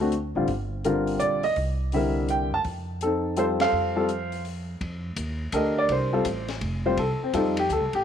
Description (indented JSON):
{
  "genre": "jazz piano trio",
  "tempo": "166 BPM",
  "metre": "3/4",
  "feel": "swing 65% on 8ths",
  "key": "F mixolydian",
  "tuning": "A4 = 439 Hz",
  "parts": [
    { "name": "warm baby grand piano", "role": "melody", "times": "0.0-8.0 s", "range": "D3 to A5", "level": "-24 LUFS", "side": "left 1 dB", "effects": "none" },
    { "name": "upright bass", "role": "bass", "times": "0.0-8.0 s", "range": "F1 to Gb2", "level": "-31 LUFS", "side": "right 1 dB", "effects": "none" },
    { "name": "compact cocktail drum kit", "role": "drums", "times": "0.1-8.0 s", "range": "hi-hat, kick drum, ride cymbal, snare drum", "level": "-37 LUFS", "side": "left 4 dB", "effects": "none" }
  ],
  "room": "light reverb, studio reverb",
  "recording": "1960s-style stereo",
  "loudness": "-23 LUFS",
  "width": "side -8 dB against mid",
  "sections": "0.0-4.8 A section; 4.8-8.0 B section",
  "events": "band accent 3.5; grand piano solo 4.8-8.0",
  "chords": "0.5 Gm7; 1.6 C9; 2.6 F9; 4.8 F13"
}